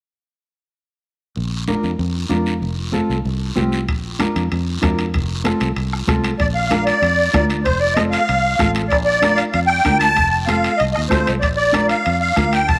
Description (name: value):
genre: latin, cumbia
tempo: 191 BPM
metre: 4/4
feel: straight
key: Bb major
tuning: A4 = 438 Hz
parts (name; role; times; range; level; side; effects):
- fingered electric bass; bass; 1.4-12.8 s; F1 to F2; -25 LUFS; equal; none
- congas; percussion; 1.4-12.8 s; none; -26 LUFS; equal; none
- guiro; percussion; 1.4-12.8 s; none; -33 LUFS; equal; none
- mellow electric guitar; accompaniment; 1.7-12.6 s; C4 to Bb4; -28 LUFS; equal; none
- bombo; percussion; 3.9-12.8 s; none; -26 LUFS; equal; none
- timbales; percussion; 3.9-12.8 s; none; -31 LUFS; equal; none
- musette accordion; melody; 6.4-12.8 s; C5 to A5; -19 LUFS; equal; tape echo
room: moderate plate reverb, RT60 3.0 s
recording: none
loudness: -18 LUFS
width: mono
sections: 1.4-6.4 A section; 6.4-12.8 B section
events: none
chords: 1.4 Bb; 2.6 F; 3.9 Bb; 5.1 F; 6.4 Bb; 7.7 F; 8.9 Bb; 10.2 F; 11.4 Bb